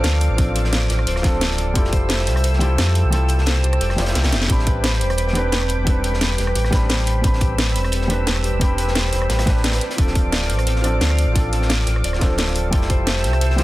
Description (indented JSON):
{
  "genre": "liquid drum and bass",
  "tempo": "175 BPM",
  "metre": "4/4",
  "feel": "straight",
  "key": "A minor",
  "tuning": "A4 = 441 Hz",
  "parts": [
    { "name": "felt-muted upright piano", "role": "accompaniment", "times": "0.0-13.6 s", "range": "F3 to B5", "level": "-25 LUFS", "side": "equal", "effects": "tape echo" },
    { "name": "lush unison pad", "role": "sustained chords", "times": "0.0-13.6 s", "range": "C4 to E6", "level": "-29 LUFS", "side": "right 1 dB", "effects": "chorus, sidechain pumping" },
    { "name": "concert harp", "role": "arpeggios", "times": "0.0-13.6 s", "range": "G4 to F5", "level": "-28 LUFS", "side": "equal", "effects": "dub echo" },
    { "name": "sub bass with octave", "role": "bass", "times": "0.0-13.6 s", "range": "D1 to F2", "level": "-20 LUFS", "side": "equal", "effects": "none" },
    { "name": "crunchy breakbeat drum kit", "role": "drums", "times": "0.0-13.6 s", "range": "hi-hat, snare drum", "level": "-30 LUFS", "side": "equal", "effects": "high-pass filter on hats, high-pass filter on snare, high-pass filter on room" },
    { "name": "garage drum kit", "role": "drums", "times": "0.0-13.6 s", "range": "hi-hat, rim click, snare drum", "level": "-23 LUFS", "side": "equal", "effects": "none" },
    { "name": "electronic kick drum", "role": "drums", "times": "0.4-2.0, 4.5-13.0 s", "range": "none", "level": "-18 LUFS", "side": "equal", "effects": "none" }
  ],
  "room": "little or no reverb",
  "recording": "dense, heavily limited modern master",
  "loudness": "-16 LUFS",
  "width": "side -17 dB against mid",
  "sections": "0.0-13.6 A section",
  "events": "kick drops out 3.1-4.5; drum fill 4.2-4.5",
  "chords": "0.0 Dm7; 1.8 Fmaj9; 4.5 Am11; 9.8 Dm7; 12.7 Fmaj9"
}